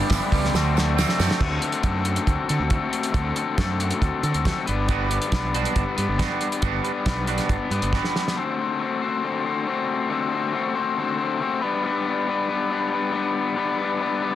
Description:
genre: indie rock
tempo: 138 BPM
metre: 4/4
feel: straight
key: D mixolydian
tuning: A4 = 444 Hz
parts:
  - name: crunchy overdriven guitar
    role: riff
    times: 0.0-14.3 s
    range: G2 to C5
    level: -24 LUFS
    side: left 4 dB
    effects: none
  - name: twangy electric guitar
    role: riff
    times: 0.0-1.4, 4.9-8.2 s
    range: G2 to F#4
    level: -29 LUFS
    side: right 13 dB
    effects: wide subtle chorus, digital delay
  - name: fuzz fingered electric bass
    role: bass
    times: 0.1-8.0 s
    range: G1 to D3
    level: -26 LUFS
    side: right 1 dB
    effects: overdrive
  - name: cloth-damped thuddy drum kit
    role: drums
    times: 0.1-8.4 s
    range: crash cymbal, hi-hat, kick drum, snare drum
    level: -25 LUFS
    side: right 1 dB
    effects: none
  - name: tambourine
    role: percussion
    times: 0.1-1.3 s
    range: none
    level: -36 LUFS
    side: right 22 dB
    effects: none
room: light reverb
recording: dense, heavily limited modern master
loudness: -21 LUFS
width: side -12 dB against mid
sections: 0.0-1.4 A section; 1.4-8.4 B section; 8.4-14.3 C section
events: drum fill 0.5-1.4, 7.9-8.4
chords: 0.0 G6; 0.5 D7; 4.7 Gmaj7; 8.4 D7; 11.6 G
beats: 0.11 0.55 0.98 | 1.41 1.84 2.28 2.71 | 3.15 3.58 4.01 4.45 | 4.88 5.32 5.75 6.19 | 6.62 7.05 7.49 7.92 | 8.36 8.79 9.23 9.66 | 10.10 10.53 10.96 11.40 | 11.83 12.27 12.70 13.14 | 13.57 14.01

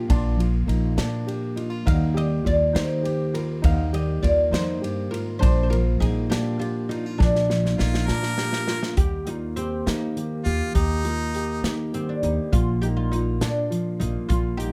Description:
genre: acoustic folk duo or small band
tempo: 68 BPM (dotted quarters)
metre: 6/8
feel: straight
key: Eb major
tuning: A4 = 440 Hz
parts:
  - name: oud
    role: melody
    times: 0.0-14.7 s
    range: Bb3 to F5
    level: -31 LUFS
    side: equal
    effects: none
  - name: fingerpicked steel-string acoustic guitar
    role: accompaniment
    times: 0.0-14.7 s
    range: Eb2 to G4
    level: -31 LUFS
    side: equal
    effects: none
  - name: felt-muted upright piano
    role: arpeggios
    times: 0.0-14.7 s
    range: D4 to G4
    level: -34 LUFS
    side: equal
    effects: none
  - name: upright bass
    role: bass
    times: 0.0-14.7 s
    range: Bb1 to Eb3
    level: -28 LUFS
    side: equal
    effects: none
  - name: natural country drum kit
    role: drums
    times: 0.1-14.7 s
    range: hi-hat, kick drum, ride cymbal, snare drum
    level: -27 LUFS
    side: equal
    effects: none
  - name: bright harmonica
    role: second line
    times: 7.8-11.7 s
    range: Eb4 to Bb4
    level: -31 LUFS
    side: equal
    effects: none
room: little or no reverb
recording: close, detailed microphones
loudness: -23 LUFS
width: mono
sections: 0.0-9.0 A section; 9.0-14.7 B section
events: drum fill 7.2-9.0; oud solo 9.0-14.7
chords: 0.0 Bb; 1.9 Eb; 5.4 Bb; 9.0 Eb; 12.5 Bb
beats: | 0.09 0.98 | 1.87 2.76 | 3.64 4.53 | 5.42 6.31 | 7.20 8.09 | 8.97 9.86 | 10.75 11.64 | 12.53 13.42 | 14.31

